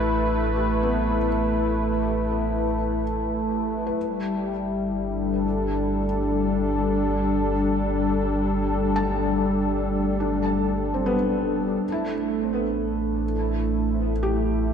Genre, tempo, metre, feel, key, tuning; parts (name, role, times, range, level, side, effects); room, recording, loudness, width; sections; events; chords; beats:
ambient; free time; A4 = 441 Hz
warm analog pad; sustained chords; 0.0-14.7 s; G3 to B4; -23 LUFS; equal; chorus
felt-muted upright piano; arpeggios; 0.0-14.7 s; B3 to A5; -31 LUFS; left 2 dB; diffuse ambient delay
warm sub bass; bass; 0.0-14.7 s; G1 to A1; -29 LUFS; equal
overtone-sweeping drone; drone; 0.0-11.9 s; A3; -34 LUFS; left 2 dB; chorus, built-in reverb
wet lush hall reverb, RT60 2.5 s; dark, warm production; -22 LUFS; side -7 dB against mid
0.0-11.8 A section; 11.8-14.7 B section
0.0 Am9; 4.0 G5; 11.8 Am9
free time